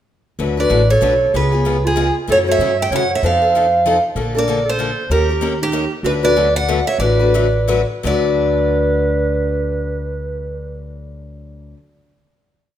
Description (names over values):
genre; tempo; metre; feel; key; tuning
acoustic string swing (jazz manouche); 162-192 BPM; 3/4; swing 60% on 8ths; D major; A4 = 435 Hz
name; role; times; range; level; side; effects
picked steel-string acoustic guitar; accompaniment; 0.4-11.8 s; C#3 to B4; -21 LUFS; left 6 dB; none
upright bass; bass; 0.4-11.7 s; A1 to G2; -21 LUFS; equal; none
picked steel-string acoustic guitar; melody; 0.6-11.7 s; G4 to G5; -18 LUFS; right 1 dB; none
mellow clarinet; second line; 0.6-11.0 s; Eb4 to E5; -21 LUFS; right 5 dB; none
room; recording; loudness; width
moderate recital hall reverb, RT60 1.5 s; minimal, uncompressed stereo recording; -14 LUFS; side -10 dB against mid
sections
0.4-8.0 A section; 8.0-10.3 final chord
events
slowing down 6.0-8.0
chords
0.4 D6; 1.3 C#7; 2.3 F#m7; 3.2 F7; 4.2 Bbmaj7; 5.1 Eb7; 6.0 D6